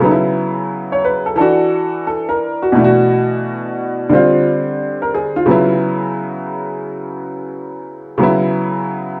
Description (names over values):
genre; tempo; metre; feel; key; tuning
hip hop; 88 BPM; 4/4; swing 63% on 16ths; unclear; A4 = 442 Hz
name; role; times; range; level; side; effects
warm upright piano; solo; 0.0-9.2 s; B2 to C#5; -16 LUFS; equal; none
room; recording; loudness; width
moderate large studio reverb, RT60 0.9 s; band playing live in one room; -16 LUFS; mono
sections
0.0-9.2 A section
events
none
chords
0.0 A69/C#; 1.4 F#7alt/E; 2.8 Bm7; 4.1 Bb13/D (rootless); 5.5 Bsus24/C#